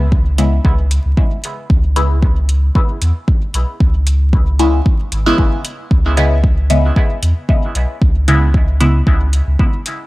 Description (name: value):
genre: dub techno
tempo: 114 BPM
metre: 4/4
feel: swing 54% on 16ths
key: C# minor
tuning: A4 = 440 Hz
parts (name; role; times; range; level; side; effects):
- filtered dub chord stab; stabs; 0.0-9.0 s; C#3 to E4; -18 LUFS; equal; phaser, sidechain pumping, dub echo
- warm sub bass; bass; 0.0-9.6 s; G#1 to E2; -14 LUFS; equal; tube saturation, sidechain pumping
- electronic kick drum; drums; 0.1-9.7 s; none; -13 LUFS; equal; overdrive
- electronic hi-hat; drums; 0.4-10.0 s; none; -25 LUFS; equal; overdrive
room: digital ambience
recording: dry, gritty hardware recording, vinyl crackle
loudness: -12 LUFS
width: side -19 dB against mid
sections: 0.0-10.1 A section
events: none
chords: 0.0 C#m7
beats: 0.12 0.65 1.17 | 1.70 2.23 2.75 3.28 | 3.81 4.33 4.86 5.38 | 5.91 6.44 6.96 7.49 | 8.02 8.54 9.07 9.59